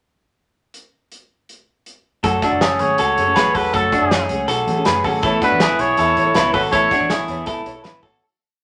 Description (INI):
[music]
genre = jangly indie pop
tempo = 160 BPM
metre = 4/4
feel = straight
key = unclear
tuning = A4 = 440 Hz
[part]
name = loose indie drum kit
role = drums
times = 0.7-8.1 s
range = hi-hat, kick drum, snare drum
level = -26 LUFS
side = equal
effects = none
[part]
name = fingerpicked steel-string acoustic guitar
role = accompaniment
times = 2.2-8.2 s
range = F#3 to C#5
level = -28 LUFS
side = equal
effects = none
[part]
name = electric guitar through a small old amp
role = arpeggios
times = 2.2-8.2 s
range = C#4 to B4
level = -21 LUFS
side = equal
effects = none
[part]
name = vintage muted picked electric bass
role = bass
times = 2.2-8.2 s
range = E1 to E2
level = -31 LUFS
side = equal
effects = none
[part]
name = warm trumpet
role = melody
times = 2.4-7.2 s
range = A4 to C#5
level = -20 LUFS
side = equal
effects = none
[sound]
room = wet studio ambience, RT60 0.5 s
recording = none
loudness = -17 LUFS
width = mono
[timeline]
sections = 0.7-2.2 pickup bar; 2.2-8.2 pre-chorus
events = fade-out 6.7-8.2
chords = 0.7 N.C.; 2.2 F#madd9; 5.2 Aadd9